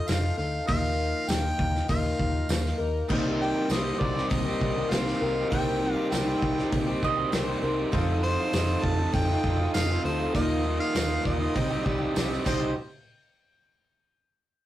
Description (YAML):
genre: folk rock and heartland rock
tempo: 99 BPM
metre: 4/4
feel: straight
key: C dorian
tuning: A4 = 441 Hz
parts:
  - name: warm harmonica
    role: melody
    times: 0.0-12.7 s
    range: C5 to A5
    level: -32 LUFS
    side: equal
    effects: none
  - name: bright concert grand piano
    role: accompaniment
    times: 0.0-12.7 s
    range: Eb4 to Eb5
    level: -38 LUFS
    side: right 2 dB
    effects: none
  - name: picked twelve-string acoustic guitar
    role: accompaniment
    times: 0.0-12.7 s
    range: C3 to Bb4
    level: -33 LUFS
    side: left 3 dB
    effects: none
  - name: mellow tonewheel organ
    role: sustained chords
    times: 0.0-12.7 s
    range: Eb4 to Eb6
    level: -36 LUFS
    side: equal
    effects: slow rotary speaker
  - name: hollow-body short-scale picked electric bass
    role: bass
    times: 0.1-12.7 s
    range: F1 to Eb2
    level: -30 LUFS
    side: equal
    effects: none
  - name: loose indie drum kit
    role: drums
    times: 0.1-12.6 s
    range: crash cymbal, hi-hat, kick drum, snare drum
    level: -31 LUFS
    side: equal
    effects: none
  - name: tambourine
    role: percussion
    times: 0.1-12.7 s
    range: none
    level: -41 LUFS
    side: right 6 dB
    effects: none
  - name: crunchy overdriven guitar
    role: riff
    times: 3.1-12.7 s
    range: F2 to G4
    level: -30 LUFS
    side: right 2 dB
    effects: none
  - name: mandolin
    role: second line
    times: 7.0-8.1, 12.5-12.7 s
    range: C5 to Eb5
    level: -31 LUFS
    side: right 6 dB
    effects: none
room: wet studio ambience, RT60 0.5 s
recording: rough rehearsal-room recording, warm saturation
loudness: -24 LUFS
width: side -13 dB against mid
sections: 0.0-12.8 A section; 12.8-14.7 B section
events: drum fill 12.5-12.8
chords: 0.0 F7; 0.7 Ebsus2; 3.1 Cm7; 7.9 F7; 10.3 Ebsus2; 11.6 Cm; 12.8 N.C.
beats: 0.08 | 0.68 1.29 1.89 2.50 | 3.10 3.71 4.31 4.91 | 5.52 6.12 6.72 7.33 | 7.93 8.54 9.14 9.74 | 10.34 10.95 11.55 12.15